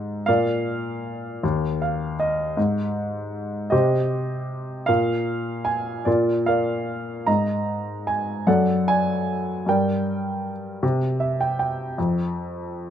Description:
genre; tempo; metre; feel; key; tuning
classical, lyrical solo piano; 52 BPM (dotted quarters); 6/8; rubato; unclear; A4 = 439 Hz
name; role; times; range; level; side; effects
warm baby grand piano; solo; 0.0-12.9 s; Eb2 to Bb5; -21 LUFS; equal; none
room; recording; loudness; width
light reverb; close, detailed microphones; -21 LUFS; side -9 dB against mid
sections
0.0-12.9 A section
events
grand piano fill 1.4-2.6, 10.8-12.0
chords
0.3 Bb; 1.4 Ebsus2; 2.6 N.C.; 3.7 Cm; 4.9 N.C.; 6.1 Bb; 7.3 Ab5; 8.5 D/F#; 9.7 Gm; 10.8 N.C.

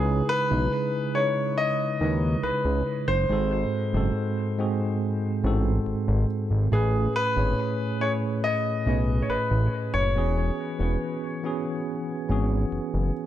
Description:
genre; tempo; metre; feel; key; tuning
contemporary R&B; 70 BPM; 4/4; straight; C# minor; A4 = 441 Hz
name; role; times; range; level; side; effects
warm concert grand piano; melody; 0.0-13.1 s; G#4 to D#5; -28 LUFS; left 1 dB; dub echo
tine electric piano; accompaniment; 0.0-13.3 s; G#2 to C#5; -27 LUFS; right 1 dB; medium stereo tremolo
fat analog bass; bass; 0.0-13.1 s; E1 to D#2; -24 LUFS; equal; none
room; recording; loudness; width
light reverb, small room reverb; echo-heavy mix; -23 LUFS; side -12 dB against mid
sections
0.0-13.3 A section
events
none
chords
0.0 C#m9; 3.3 G#7b9; 6.7 Amaj9; 10.2 E69

